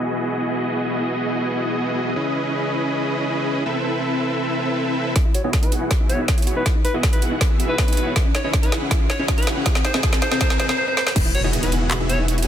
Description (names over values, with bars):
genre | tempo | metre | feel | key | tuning
future bass | 160 BPM | 4/4 | half-time | E major | A4 = 441 Hz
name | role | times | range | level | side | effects
dense compressed supersaw | riff | 0.0-12.5 s | B3 to F#5 | -23 LUFS | equal | sidechain pumping, low-pass filter, tape echo
thumb-piano-like synth pluck | arpeggios | 5.2-12.4 s | C4 to F#4 | -29 LUFS | left 1 dB | chorus, sidechain pumping, tape echo
electronic kick drum | drums | 5.2-11.2 s | none | -19 LUFS | equal | none
trap drum kit | drums | 5.2-12.5 s | crash cymbal, handclaps, hi-hat, snare drum, toms | -24 LUFS | equal | high-pass filter on hats, low-pass filter on hats, high-pass filter on cymbals, low-pass filter on cymbals, high-pass filter on snare, low-pass filter on snare, high-pass filter on toms, low-pass filter on toms
riser and impact | sound effects | 7.2-12.5 s | none | -30 LUFS | equal | none
clear alto saxophone | melody | 5.3-12.2 s | B4 to C#5 | -26 LUFS | equal | sidechain pumping, low-pass filter, tape echo
saturated sub bass | bass | 11.2-12.5 s | E1 | -23 LUFS | equal | sidechain pumping
room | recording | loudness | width
light reverb | dense, heavily limited modern master | -18 LUFS | side -10 dB against mid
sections
0.0-5.2 A section; 5.2-11.2 B section; 11.2-12.5 C section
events
filter sweep on supersaw synth 0.0-5.2, 5.2-11.2; build-up 5.2-11.2; drum fill 5.2-10.8, 10.9; filter sweep on alto saxophone 5.2-11.2; riser 7.2-10.8; drop 11.2-12.5; impact 11.2-12.5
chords
0.0 Emaj9; 2.2 C#m9; 3.7 Amadd9; 5.2 Emaj9; 8.2 C#m9; 9.7 Cmaj7#5; 11.2 Emaj9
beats
0.28 | 0.66 1.03 1.41 1.78 | 2.16 2.53 2.91 3.28 | 3.66 4.03 4.41 4.78 | 5.16 5.53 5.91 6.28 | 6.66 7.03 7.41 7.78 | 8.16 8.53 8.91 9.28 | 9.66 10.03 10.41 10.78 | 11.16 11.53 11.91 12.28